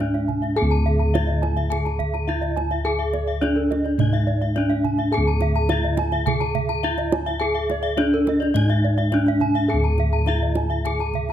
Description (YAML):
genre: Balinese gamelan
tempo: 105 BPM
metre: 4/4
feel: straight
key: D pelog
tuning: A4 = 435 Hz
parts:
  - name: gamelan-type bronze metallophone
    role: melody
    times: 0.0-11.3 s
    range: D4 to A4-45c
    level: -24 LUFS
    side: right 1 dB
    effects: none
  - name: gamelan-type bronze metallophone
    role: arpeggios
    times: 0.0-11.3 s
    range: D5 to Bb5-40c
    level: -28 LUFS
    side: left 7 dB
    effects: none
  - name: gamelan-type bossed gongs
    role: bass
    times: 0.0-11.3 s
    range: D2 to A4-45c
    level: -22 LUFS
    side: equal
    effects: none
  - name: kendang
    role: percussion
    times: 0.0-11.3 s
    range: none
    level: -29 LUFS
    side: right 6 dB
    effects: none
  - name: gamelan-type bronze metallophone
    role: arpeggios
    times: 0.1-11.3 s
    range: Bb4-40c to A5-45c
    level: -29 LUFS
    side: right 5 dB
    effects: none
room: light reverb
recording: close, detailed microphones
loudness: -19 LUFS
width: side -10 dB against mid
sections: 0.0-11.3 A section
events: none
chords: none